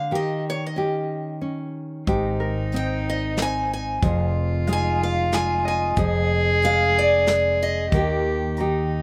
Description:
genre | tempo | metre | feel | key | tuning
acoustic folk-pop ballad | 92 BPM | 3/4 | straight | unclear | A4 = 440 Hz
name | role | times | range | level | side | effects
picked acoustic archtop guitar | melody | 0.0-9.0 s | Db5 to Ab5 | -27 LUFS | equal | slapback echo
nylon-string guitar | accompaniment | 0.0-9.0 s | F2 to Ab4 | -29 LUFS | equal | none
dark cello | second line | 2.1-9.0 s | Eb4 to Ab4 | -28 LUFS | equal | none
mellow fretless electric bass | bass | 2.1-9.0 s | F1 to Eb2 | -28 LUFS | equal | none
soft brush drum kit | drums | 2.1-8.7 s | hi-hat, kick drum, snare drum | -27 LUFS | equal | none
Celtic harp | arpeggios | 2.4-9.0 s | Bb4 to Bb5 | -38 LUFS | equal | slapback echo
room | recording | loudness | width
little or no reverb | recorded outdoors, with no room sound | -22 LUFS | mono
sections
0.0-9.0 A section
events
none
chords
0.1 Eb7; 2.1 Abmaj7; 4.0 Fm7; 7.9 Eb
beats
| 0.12 0.78 1.43 | 2.08 2.73 3.38 | 4.03 4.67 5.32 | 5.97 6.62 7.27 | 7.92 8.57

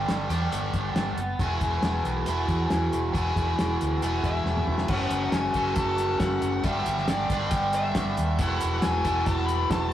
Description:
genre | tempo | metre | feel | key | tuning
classic rock | 137 BPM | 4/4 | straight | unclear | A4 = 445 Hz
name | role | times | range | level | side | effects
crunchy overdriven guitar | riff | 0.0-9.9 s | E2 to A4 | -26 LUFS | equal | spring reverb
fingered electric bass | bass | 0.0-9.9 s | E1 to E2 | -30 LUFS | equal | none
cloth-damped thuddy drum kit | drums | 0.1-9.8 s | crash cymbal, hi-hat, kick drum, snare drum, toms | -29 LUFS | equal | none
smooth overdriven lead guitar | melody | 4.3-9.9 s | D5 to B5 | -31 LUFS | left 3 dB | wah
room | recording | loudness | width
moderate stone room reverb, RT60 1.1 s | rough rehearsal-room recording, warm saturation | -23 LUFS | side -11 dB against mid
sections
0.0-4.9 A section; 4.9-9.9 B section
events
drum fill 4.5-4.9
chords
0.0 G; 1.4 E; 4.9 F#m; 6.6 G; 8.4 Esus4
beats
0.08 0.52 0.96 | 1.39 1.83 2.27 2.71 | 3.14 3.58 4.02 4.46 | 4.89 5.33 5.77 6.21 | 6.64 7.08 7.52 7.96 | 8.39 8.83 9.27 9.71

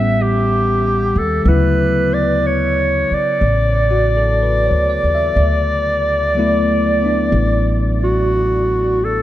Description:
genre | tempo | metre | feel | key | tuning
jazz ballad | 61 BPM | 4/4 | swing 69% on 8ths | D major | A4 = 440 Hz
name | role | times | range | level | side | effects
clear clarinet | melody | 0.0-9.2 s | F#4 to E5 | -16 LUFS | equal | diffuse ambient delay
bell-like tine electric piano | accompaniment | 0.0-9.2 s | C#3 to F#5 | -20 LUFS | left 1 dB | lush chorus
upright bass | bass | 0.0-9.2 s | A1 to Eb2 | -18 LUFS | equal | none
room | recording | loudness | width
moderate plate reverb, RT60 3.4 s | dreamy mix soaked in reverb | -13 LUFS | side -13 dB against mid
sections
0.0-9.2 A section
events
none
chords
0.0 A13; 1.4 Dmaj13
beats
0.47 | 1.45 2.42 3.40 4.38 | 5.36 6.34 7.32 8.31

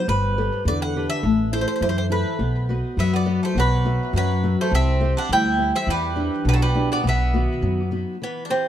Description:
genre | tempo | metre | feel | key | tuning
greek folk, Greek bouzouki band | 103 BPM | 2/4 | straight | unclear | A4 = 439 Hz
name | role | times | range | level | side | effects
Greek bouzouki | melody | 0.0-8.7 s | B3 to G5 | -25 LUFS | right 1 dB | tape echo
fingerpicked steel-string acoustic guitar | accompaniment | 0.0-8.7 s | B2 to E5 | -24 LUFS | left 2 dB | none
upright bass | bass | 0.1-8.0 s | G1 to F#2 | -22 LUFS | equal | none
Greek bouzouki | second line | 3.0-7.9 s | F#3 to E4 | -28 LUFS | right 3 dB | none
room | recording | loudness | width
light reverb | dark, warm production | -19 LUFS | side -10 dB against mid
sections
0.0-8.2 A section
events
none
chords
0.1 Gadd9; 1.2 Am; 2.4 B; 3.6 Bsus4; 4.7 C; 5.9 Em7; 7.0 B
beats
| 0.08 0.66 | 1.24 1.82 | 2.40 2.98 | 3.56 4.13 | 4.72 5.30 | 5.88 6.46 | 7.04 7.63 | 8.21

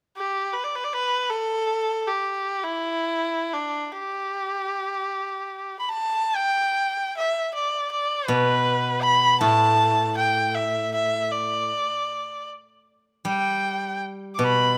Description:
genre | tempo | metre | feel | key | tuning
chinese traditional, Chinese chamber ensemble | 60-80 BPM | 2/4 | rubato | G gong mode | A4 = 440 Hz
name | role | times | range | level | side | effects
rich erhu | melody | 0.2-14.8 s | D4 to D6 | -25 LUFS | equal | none
steel-string zither | accompaniment | 8.3-14.8 s | A2 to G3 | -28 LUFS | equal | none
room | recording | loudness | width
moderate recital hall reverb, RT60 1.4 s | close, detailed microphones | -24 LUFS | mono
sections
0.0-6.8 A section; 6.8-14.8 B section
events
none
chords
none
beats
0.20 | 1.15 2.09 | 3.02 3.97 | 4.92 5.89 | 6.77 7.54 | 8.29 9.04 | 9.79 10.54 | 11.30 12.09 | 12.87 13.65 | 14.42

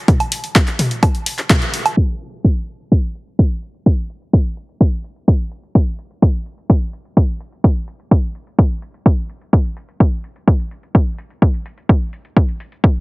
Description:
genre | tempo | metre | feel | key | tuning
techno | 127 BPM | 4/4 | straight | none | none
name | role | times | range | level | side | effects
electronic kick drum | drums | 0.1-12.9 s | none | -12 LUFS | equal | overdrive
punchy analog drum machine | drums | 0.1-12.9 s | handclaps, hi-hat, toms, woodblock | -18 LUFS | equal | overdrive, low-pass filter on hats, low-pass filter on perc, low-pass filter on toms, low-pass filter on snare
room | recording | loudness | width
little or no reverb | heavily compressed radio sound, multiband compression, low-pass filter | -15 LUFS | side -26 dB against mid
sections
0.0-2.0 A section; 2.0-13.0 B section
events
band accent 1.5; filter sweep 2.0-13.0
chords
none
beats
| 0.08 0.56 1.03 1.50 | 1.97 2.44 2.92 3.39 | 3.86 4.33 4.81 5.28 | 5.75 6.22 6.70 7.17 | 7.64 8.11 8.59 9.06 | 9.53 10.00 10.48 10.95 | 11.42 11.89 12.37 12.84

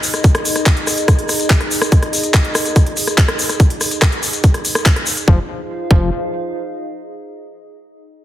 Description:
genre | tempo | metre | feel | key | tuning
psychedelic trance | 143 BPM | 4/4 | straight | unclear | A4 = 440 Hz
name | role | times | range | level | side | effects
garage drum kit | drums | 0.0-5.3 s | handclaps, hi-hat, rim click | -18 LUFS | equal | none
egg shaker | percussion | 0.0-5.3 s | none | -22 LUFS | left 4 dB | none
warbly tape-like pad | texture | 0.0-6.9 s | Eb4 to F5 | -24 LUFS | equal | chorus, built-in reverb, sidechain pumping
electronic kick drum | drums | 0.2-6.0 s | none | -14 LUFS | equal | none
overdriven acid bass | riff | 5.3-6.1 s | F3 | -24 LUFS | moving between left 5 dB and right 3 dB | distortion, auto-pan, sidechain pumping, ping-pong delay
round analog bass | bass | 5.3-6.1 s | F1 | -19 LUFS | equal | tube saturation
room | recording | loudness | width
light reverb | heavily compressed radio sound | -12 LUFS | side -12 dB against mid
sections
0.0-5.3 A section; 5.3-7.0 B section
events
fade-out on ambient pad 0.0-5.3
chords
0.0 Ab5; 5.3 F5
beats
| 0.24 0.66 1.08 1.50 | 1.92 2.34 2.76 3.18 | 3.60 4.02 4.44 4.86 | 5.28 5.70 6.12 6.54

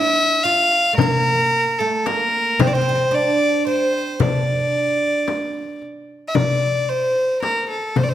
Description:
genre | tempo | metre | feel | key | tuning
Turkish makam ensemble | 112 BPM (eighths) | 10/8 | straight | D makam ussak | A4 = 440 Hz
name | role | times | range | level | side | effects
rich violin | melody | 0.0-8.1 s | A4 to F5 | -18 LUFS | equal | none
oud | second line | 0.0-5.8 s | A3 to F4 | -26 LUFS | right 6 dB | none
darbuka | percussion | 1.0-8.1 s | none | -22 LUFS | left 1 dB | none
frame drum | percussion | 1.0-8.1 s | none | -24 LUFS | left 5 dB | none
room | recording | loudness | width
wet recital hall reverb, RT60 1.5 s | none | -16 LUFS | side -12 dB against mid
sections
0.0-6.4 A section; 6.4-8.1 B section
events
none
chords
none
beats
0.45 | 0.98 1.52 2.06 2.60 3.13 3.67 4.21 4.74 5.28 5.82 | 6.36 6.89 7.43 7.97

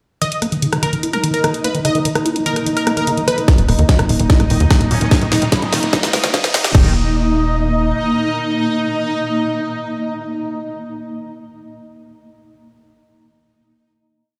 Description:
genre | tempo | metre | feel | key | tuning
psychedelic trance | 147 BPM | 4/4 | straight | unclear | A4 = 441 Hz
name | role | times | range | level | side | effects
supersaw stab | melody | 0.2-3.4 s | Bb4 to Eb5 | -24 LUFS | equal | phaser, sidechain pumping, dub echo
bubbling stepped-filter texture | sustained chords | 0.7-10.8 s | Eb4 to Eb5 | -26 LUFS | equal | chorus, built-in reverb, sidechain pumping
liquid acid bass | riff | 0.2-6.9 s | Db3 to Fb4 | -25 LUFS | equal | phaser, sidechain pumping, dub echo
drum and bass drum kit | drums | 0.2-6.8 s | crash cymbal, hi-hat, rim click, snare drum | -23 LUFS | equal | high-pass filter on hats, small room ambience, high-pass filter on snare, high-pass filter on cymbals
granular cloud pad | texture | 0.9-10.8 s | Bb3 to Bb5 | -24 LUFS | equal | built-in reverb, sidechain pumping
electronic kick drum | drums | 3.5-6.8 s | none | -15 LUFS | equal | small room ambience
riser | sound effects | 5.2-6.7 s | none | -30 LUFS | equal | none
tight sequencer bass | bass | 3.6-7.9 s | Eb1 to Eb2 | -20 LUFS | equal | none
metallic wobble bass | second line | 4.9-6.8 s | Db4 to G4 | -30 LUFS | equal | subtle chorus, sidechain pumping, high-pass filter, delay
room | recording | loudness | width
moderate digital room reverb, RT60 1.2 s, digital ambience | played on a big sound system in a bare room, large studio reverb, high-pass filter | -16 LUFS | mono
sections
0.2-3.5 intro; 3.5-6.7 build; 6.7-10.0 final chord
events
build-up 3.5-6.7; drum fill 3.5-6.7; filter sweep 3.5-6.7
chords
0.2 Eb5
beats
| 0.22 0.62 1.03 1.44 | 1.85 2.26 2.67 3.07 | 3.48 3.89 4.30 4.71 | 5.11 5.52 5.93 6.34 | 6.75 7.16 7.56 7.97 | 8.38 8.79 9.20 9.60

